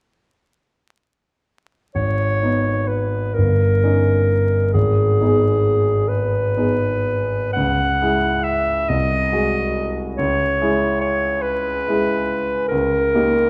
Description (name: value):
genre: classical, romantic duo for clarinet and grand piano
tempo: 39-48 BPM (dotted quarters)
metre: 6/8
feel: rubato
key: G# minor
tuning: A4 = 440 Hz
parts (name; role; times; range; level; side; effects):
- clear concert grand piano; accompaniment; 1.9-13.5 s; G1 to G#4; -22 LUFS; equal; none
- bright clarinet; melody; 2.0-13.5 s; G#4 to F#5; -22 LUFS; equal; none
room: moderate recital hall reverb, RT60 1.3 s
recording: dark, warm production, vinyl crackle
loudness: -19 LUFS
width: mono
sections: 2.0-13.5 A section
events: none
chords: 2.0 G#m; 3.4 D#7/G; 4.7 G#m; 7.5 C#m; 8.9 G#7/B#; 10.2 C#m; 12.7 D#7/C#